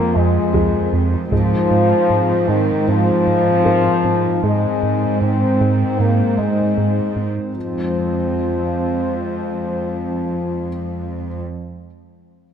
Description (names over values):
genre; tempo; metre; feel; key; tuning
cinematic, hybrid orchestral and electronic film score; 77 BPM; 4/4; straight; F minor; A4 = 440 Hz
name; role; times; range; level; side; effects
hollow soft pad; sustained chords; 0.0-11.4 s; Ab3 to C5; -24 LUFS; right 1 dB; chorus
mellow French horn section; sustained chords; 0.0-11.4 s; Eb3 to C4; -19 LUFS; left 3 dB; none
rich symphonic cello section; bass; 0.0-11.4 s; F2 to Ab2; -23 LUFS; right 3 dB; none
felt-muted upright piano; texture; 0.0-7.6 s; Ab4 to Eb5; -30 LUFS; left 4 dB; ping-pong delay
round analog bass; riff; 0.2-7.4 s; F2 to Ab2; -21 LUFS; right 2 dB; none
analog pluck; arpeggios; 0.5-7.4 s; F3 to C4; -31 LUFS; left 2 dB; none
solo taiko drums; drums; 0.5-2.8 s; none; -27 LUFS; equal; none
room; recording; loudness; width
moderate concert hall reverb, RT60 2.4 s; none; -16 LUFS; side -8 dB against mid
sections
0.0-7.6 A section; 7.6-10.7 B section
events
none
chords
0.0 Fm; 1.3 Ab; 7.6 Fm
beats
0.54 | 1.32 2.10 2.88 3.65 | 4.43 5.21 5.99 6.77 | 7.55 8.33 9.11 9.89